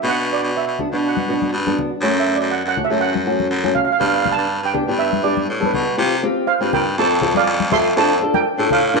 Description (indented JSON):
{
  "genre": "calypso",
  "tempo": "121 BPM",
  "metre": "4/4",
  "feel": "swing 53% on 16ths",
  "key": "unclear",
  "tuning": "A4 = 440 Hz",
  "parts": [
    { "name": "steel pan", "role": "melody", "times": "0.0-9.0 s", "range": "A4 to C6", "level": "-20 LUFS", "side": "right 9 dB", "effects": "none" },
    { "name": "flamenco guitar", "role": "accompaniment", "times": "0.0-9.0 s", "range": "A3 to Bb4", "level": "-20 LUFS", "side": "left 2 dB", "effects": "none" },
    { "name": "raspy baritone saxophone", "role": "bass", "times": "0.0-9.0 s", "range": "F2 to C3", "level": "-21 LUFS", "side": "left 1 dB", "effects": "none" },
    { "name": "congas", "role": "percussion", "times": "0.8-8.8 s", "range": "none", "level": "-27 LUFS", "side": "left 12 dB", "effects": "none" }
  ],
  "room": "wet echo chamber reverb, RT60 1.6 s, studio reverb",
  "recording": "1960s-style stereo with parts hard left and right",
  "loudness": "-16 LUFS",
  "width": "side -2 dB against mid",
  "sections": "0.0-6.0 A section; 6.0-9.0 B section",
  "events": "steel pan solo 0.0-6.0",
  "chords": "0.0 Bm; 2.0 F#m; 4.0 G; 6.0 Csus4; 7.0 F; 8.0 Dm7/F"
}